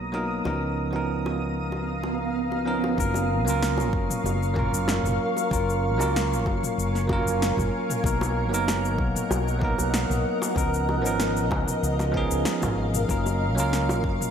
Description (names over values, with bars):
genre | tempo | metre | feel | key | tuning
sunset chillout | 95 BPM | 4/4 | straight | F# major | A4 = 441 Hz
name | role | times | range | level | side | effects
bell-like tine electric piano | accompaniment | 0.0-14.3 s | E#3 to A#4 | -27 LUFS | moving between left 3 dB and right 5 dB | auto-pan, analog delay
shimmering ambient pad | sustained chords | 0.0-14.3 s | B3 to D#6 | -29 LUFS | equal | chorus, built-in reverb
mellow fretless electric bass | bass | 0.0-14.2 s | F#1 to C#2 | -28 LUFS | left 1 dB | none
bongos | percussion | 0.1-14.0 s | none | -35 LUFS | right 2 dB | none
deep house drum kit | drums | 3.0-14.3 s | cabasa, snare drum, toms | -31 LUFS | left 1 dB | overdrive
electronic kick drum | drums | 3.0-14.2 s | none | -29 LUFS | left 1 dB | overdrive
room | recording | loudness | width
moderate plate reverb, RT60 2.0 s | dreamy mix soaked in reverb | -22 LUFS | side -8 dB against mid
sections
0.0-3.0 A section; 3.0-14.3 B section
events
filter sweep on ambient pad 0.0-3.0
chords
0.5 C#13; 3.0 F#maj7; 8.0 Bmaj7; 10.6 C#13; 13.1 F#maj7